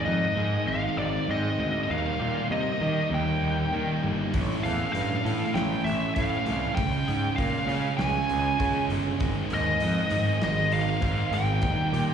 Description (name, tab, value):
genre	quiet-loud alternative rock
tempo	99 BPM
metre	4/4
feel	straight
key	unclear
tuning	A4 = 440 Hz
part	nasal lead guitar with a parked wah	melody	0.0-12.1 s	D5 to Ab5	-29 LUFS	equal	overdrive, slapback echo
part	twelve-string electric guitar	arpeggios	0.0-12.1 s	Ab2 to A4	-34 LUFS	right 3 dB	slapback echo
part	thick fuzz guitar	riff	0.0-12.1 s	Ab2 to F4	-29 LUFS	right 1 dB	distortion, slapback echo
part	fuzz picked electric bass	bass	0.1-12.1 s	G1 to Eb3	-29 LUFS	right 1 dB	overdrive
part	loose indie drum kit	drums	4.3-12.1 s	hi-hat, kick drum, snare drum	-34 LUFS	equal	none
room	light reverb, small room ambience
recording	live gig heard through the venue's PA, recital hall reverb, small room reverb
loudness	-24 LUFS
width	side -8 dB against mid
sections	0.0-12.1 A section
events	half time 0.0-12.1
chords	0.0 Ab; 1.9 Eb; 4.3 A; 6.8 Db; 9.2 Ab; 11.6 Eb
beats	0.06 0.67 1.28 | 1.89 2.50 3.12 3.73 | 4.34 4.95 5.55 6.16 | 6.77 7.38 7.99 8.60 | 9.20 9.81 10.42 11.03 | 11.63